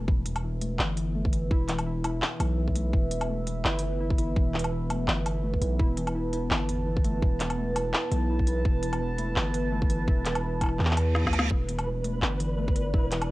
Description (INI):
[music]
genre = half-time drum and bass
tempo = 168 BPM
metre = 4/4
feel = swing 56% on 16ths, half-time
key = E minor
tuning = A4 = 437 Hz
[part]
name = dark analog pad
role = sustained chords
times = 0.0-13.3 s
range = E3 to A5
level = -32 LUFS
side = right 2 dB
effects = chorus, phaser, sidechain pumping, cassette tape
[part]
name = warbly dusty pluck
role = arpeggios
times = 0.0-13.3 s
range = E2 to E4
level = -35 LUFS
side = left 2 dB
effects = wide subtle chorus, cassette tape, analog delay
[part]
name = long sustained 808-style bass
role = bass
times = 0.0-13.3 s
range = E1 to E2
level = -29 LUFS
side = equal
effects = none
[part]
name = electronic kick drum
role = drums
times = 0.1-13.0 s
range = none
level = -25 LUFS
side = equal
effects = small room ambience, cassette tape
[part]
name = organic electronic drum kit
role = drums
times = 0.3-13.3 s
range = handclaps, hi-hat, snare drum, woodblock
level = -30 LUFS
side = equal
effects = small room ambience, cassette tape
[part]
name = reverse cymbal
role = sound effects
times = 11.0-11.5 s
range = none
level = -36 LUFS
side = right 6 dB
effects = none
[part]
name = flickering grainy texture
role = texture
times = 11.8-13.3 s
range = B4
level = -37 LUFS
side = equal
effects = built-in reverb, cassette tape
[sound]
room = little or no reverb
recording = home recording on cassette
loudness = -25 LUFS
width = side -18 dB against mid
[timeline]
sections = 0.1-13.3 A section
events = drop 0.1-13.3; reverse cymbal 11.0-11.5; drum fill 11.2-11.5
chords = 0.1 E5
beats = | 0.08 0.44 0.79 1.15 | 1.51 1.86 2.22 2.58 | 2.94 3.29 3.65 4.01 | 4.37 4.72 5.08 5.44 | 5.79 6.15 6.51 6.87 | 7.22 7.58 7.94 8.29 | 8.65 9.01 9.37 9.72 | 10.08 10.44 10.79 11.15 | 11.51 11.87 12.22 12.58 | 12.94 13.29